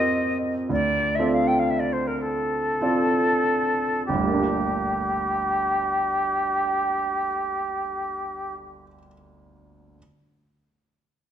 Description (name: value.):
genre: classical, impressionist duo for flute and grand piano.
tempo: 30-45 BPM (dotted quarters).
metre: 6/8.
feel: rubato.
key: G minor.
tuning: A4 = 437 Hz.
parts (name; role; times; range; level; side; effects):
silver concert flute; melody; 0.0-8.5 s; G4 to G5; -24 LUFS; equal; none.
warm grand piano; accompaniment; 0.0-10.0 s; G1 to Eb5; -26 LUFS; right 2 dB; none.
room: wet recital hall reverb, RT60 1.5 s.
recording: dark, warm production.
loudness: -22 LUFS.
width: side -10 dB against mid.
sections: 0.0-4.1 A section; 4.1-7.8 B section.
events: slowing down 0.0-4.1.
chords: 0.0 F9sus4; 0.7 Dm7; 4.1 Gm.